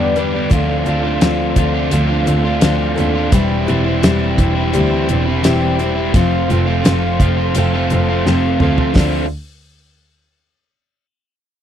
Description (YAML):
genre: folk rock and heartland rock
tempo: 85 BPM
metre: 4/4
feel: straight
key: D dorian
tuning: A4 = 440 Hz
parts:
  - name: picked steel-string acoustic guitar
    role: accompaniment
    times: 0.0-9.3 s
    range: G2 to B4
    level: -20 LUFS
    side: left 6 dB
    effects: none
  - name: mellow tonewheel organ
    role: sustained chords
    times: 0.0-9.3 s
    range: D4 to D6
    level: -30 LUFS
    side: right 4 dB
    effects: chorus vibrato, lush chorus
  - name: overdriven electric guitar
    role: riff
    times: 0.0-9.2 s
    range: F2 to G4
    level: -18 LUFS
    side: right 2 dB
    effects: none
  - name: rich double bass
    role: bass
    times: 0.0-9.3 s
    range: E1 to E2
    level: -18 LUFS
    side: equal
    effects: none
  - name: damped 70s drum kit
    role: drums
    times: 0.2-9.1 s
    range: hi-hat, kick drum, snare drum, toms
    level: -15 LUFS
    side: equal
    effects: none
room: little or no reverb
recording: dry, close 1970s-style studio recording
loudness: -13 LUFS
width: side -10 dB against mid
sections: 0.0-9.0 A section; 9.0-11.6 B section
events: drum fill 8.3-9.0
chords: 0.0 G; 0.5 Dm7; 3.3 C/E; 6.1 F; 9.0 Dm7